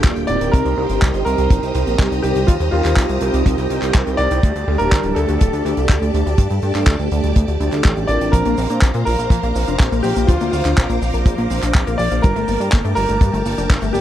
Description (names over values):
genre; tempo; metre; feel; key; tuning
italo disco; 123 BPM; 4/4; straight; unclear; A4 = 441 Hz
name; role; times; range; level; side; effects
clear baby grand piano; melody; 0.0-14.0 s; F4 to D5; -23 LUFS; equal; tape echo
string machine, full ensemble; sustained chords; 0.0-14.0 s; Bb3 to Eb6; -24 LUFS; equal; phaser, ensemble chorus
mellow synth brass; stabs; 0.0-8.5 s; G3 to A5; -24 LUFS; right 3 dB; chorus, tape echo
chorused synth bass; bass; 0.0-14.0 s; D1 to Bb2; -20 LUFS; equal; none
damped 70s drum kit; drums; 0.0-14.0 s; cabasa, handclaps, hi-hat; -25 LUFS; equal; none
kick drum; drums; 0.0-13.8 s; none; -14 LUFS; equal; none
analog pluck; arpeggios; 8.3-14.0 s; F3 to D4; -24 LUFS; left 4 dB; chorus, tape echo
room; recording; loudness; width
little or no reverb; dry, close 1970s-style studio recording; -14 LUFS; side -12 dB against mid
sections
0.0-14.0 A section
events
none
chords
0.0 Gmadd9; 0.5 Cm7; 4.4 Dsus4; 8.3 Bbadd9; 12.2 Gmadd9